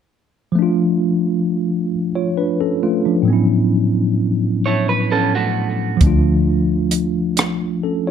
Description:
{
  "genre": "slow six-eight R&B",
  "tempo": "44 BPM (dotted quarters)",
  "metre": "6/8",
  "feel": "straight",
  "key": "unclear",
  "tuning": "A4 = 440 Hz",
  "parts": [
    { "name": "tine electric piano", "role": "accompaniment", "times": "0.5-8.1 s", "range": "A2 to C#5", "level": "-16 LUFS", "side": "left 1 dB", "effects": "medium stereo tremolo" },
    { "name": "electric guitar through a small old amp", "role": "second line", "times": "4.7-6.0 s", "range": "A3 to C#5", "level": "-20 LUFS", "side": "right 6 dB", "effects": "tape echo" },
    { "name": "fingered electric bass", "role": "bass", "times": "6.0-8.1 s", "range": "D2", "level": "-20 LUFS", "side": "equal", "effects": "none" },
    { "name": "compact cocktail drum kit", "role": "drums", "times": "6.0-7.6 s", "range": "hi-hat, kick drum, rim click", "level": "-16 LUFS", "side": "right 1 dB", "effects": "none" }
  ],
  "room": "moderate studio reverb, RT60 0.8 s",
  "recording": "dark, warm production",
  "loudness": "-15 LUFS",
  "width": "side -8 dB against mid",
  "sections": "0.6-8.1 A section",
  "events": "none",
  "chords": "0.6 Dm; 3.3 A69; 6.0 Dm"
}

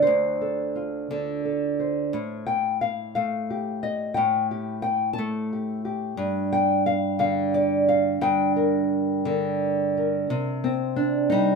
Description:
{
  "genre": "folk, solo fingerstyle acoustic guitar",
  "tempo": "59 BPM (dotted quarters)",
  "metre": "6/8",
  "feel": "rubato",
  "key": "G minor",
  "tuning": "A4 = 439 Hz",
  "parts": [
    { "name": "nylon-string guitar", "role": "solo", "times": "0.0-11.6 s", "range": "D2 to A5", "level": "-22 LUFS", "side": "equal", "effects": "none" }
  ],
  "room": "wet studio reverb, RT60 0.7 s",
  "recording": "minimal, uncompressed stereo recording",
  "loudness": "-22 LUFS",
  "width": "side -4 dB against mid",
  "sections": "0.0-10.3 A section; 10.3-11.6 B section",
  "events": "none",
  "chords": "0.0 Dm7; 2.1 Fadd9/A; 6.2 Gm; 10.3 Cm"
}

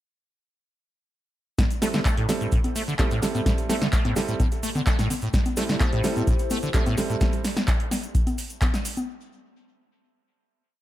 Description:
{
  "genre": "acid house",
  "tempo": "128 BPM",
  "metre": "4/4",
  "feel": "straight",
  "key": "A minor",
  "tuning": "A4 = 440 Hz",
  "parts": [
    { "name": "acid bass, saw", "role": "riff", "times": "1.6-7.2 s", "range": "A2 to A3", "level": "-28 LUFS", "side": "equal", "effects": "lush chorus, dub echo" },
    { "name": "electro analog drum machine", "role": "drums", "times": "1.6-9.1 s", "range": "congas, handclaps, hi-hat, snare drum", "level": "-28 LUFS", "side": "equal", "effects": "overdrive" },
    { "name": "electronic kick drum", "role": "drums", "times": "1.6-8.7 s", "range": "none", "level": "-23 LUFS", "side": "equal", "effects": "none" },
    { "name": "cabasa", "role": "percussion", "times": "1.6-9.1 s", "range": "none", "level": "-39 LUFS", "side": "left 2 dB", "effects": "none" },
    { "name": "warm grand piano", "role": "stabs", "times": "1.8-7.4 s", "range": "G3 to A4", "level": "-30 LUFS", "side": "right 4 dB", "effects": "dub echo" },
    { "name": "dark analog pad", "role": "sustained chords", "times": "5.6-7.2 s", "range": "A3 to C5", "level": "-33 LUFS", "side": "left 2 dB", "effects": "chorus, phaser, sidechain pumping" }
  ],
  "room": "little or no reverb",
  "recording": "echo-heavy mix",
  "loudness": "-21 LUFS",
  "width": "side -14 dB against mid",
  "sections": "1.6-9.1 drop",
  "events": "drop 1.6-9.1",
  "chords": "1.6 Am7"
}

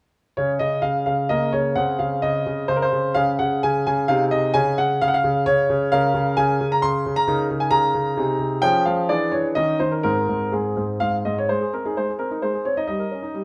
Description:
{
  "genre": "classical-period piano sonatina",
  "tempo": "130 BPM",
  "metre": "3/4",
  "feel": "rubato",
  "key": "Db major, Ab major from 5.9 s",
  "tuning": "A4 = 441 Hz",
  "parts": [
    { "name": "clear concert grand piano", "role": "solo", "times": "0.4-13.4 s", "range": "Ab2 to C6", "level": "-21 LUFS", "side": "equal", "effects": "none" }
  ],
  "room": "moderate recital hall reverb, RT60 1.7 s",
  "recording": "close, detailed microphones",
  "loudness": "-21 LUFS",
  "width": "mono",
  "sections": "0.4-11.5 A section; 11.5-13.4 B section",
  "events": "none",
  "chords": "0.4 Db5; 1.3 Eb5/Db; 1.8 Ab/Db; 3.2 Db5; 4.1 Ab/C; 4.5 Db5; 5.9 Bbm/Db; 7.3 Eb5/Db; 8.2 Ab/C; 8.6 Db/F; 9.1 E7; 9.6 Bbmadd11/Eb; 10.0 Ab; 12.9 Eb7/G"
}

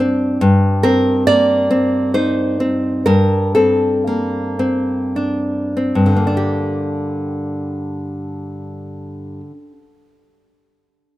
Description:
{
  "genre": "romantic piece for solo classical guitar",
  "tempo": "47-72 BPM",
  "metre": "3/4",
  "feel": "rubato",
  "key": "G minor",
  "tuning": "A4 = 438 Hz",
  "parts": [
    { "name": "nylon-string guitar", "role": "solo", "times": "0.0-9.8 s", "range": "G2 to D5", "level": "-15 LUFS", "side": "equal", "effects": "none" }
  ],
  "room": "light reverb, small room ambience",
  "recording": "rough home demo mix",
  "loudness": "-14 LUFS",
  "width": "side -15 dB against mid",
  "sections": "0.0-6.4 A section; 6.4-10.0 B section",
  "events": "slowing down 0.0-6.4",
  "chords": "0.4 Cm/G; 3.1 D5/G; 6.4 Gm"
}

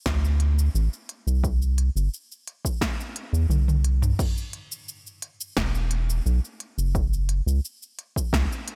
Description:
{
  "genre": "sunset chillout",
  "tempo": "87 BPM",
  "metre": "4/4",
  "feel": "straight",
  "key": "unclear",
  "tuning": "A4 = 436 Hz",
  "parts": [
    { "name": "round analog bass", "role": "bass", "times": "0.1-8.5 s", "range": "E1 to E2", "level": "-24 LUFS", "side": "equal", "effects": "tube saturation" },
    { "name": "deep house drum kit", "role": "drums", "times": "0.1-8.8 s", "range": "crash cymbal, hi-hat, shaker, snare drum, toms", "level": "-33 LUFS", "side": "equal", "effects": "none" },
    { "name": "electronic kick drum", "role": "drums", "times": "0.1-8.5 s", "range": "none", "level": "-30 LUFS", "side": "equal", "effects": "none" }
  ],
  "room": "little or no reverb",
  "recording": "none",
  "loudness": "-25 LUFS",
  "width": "mono",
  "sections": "0.0-4.2 A section; 4.2-8.8 B section",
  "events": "drum fill 3.5-4.2",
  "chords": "none"
}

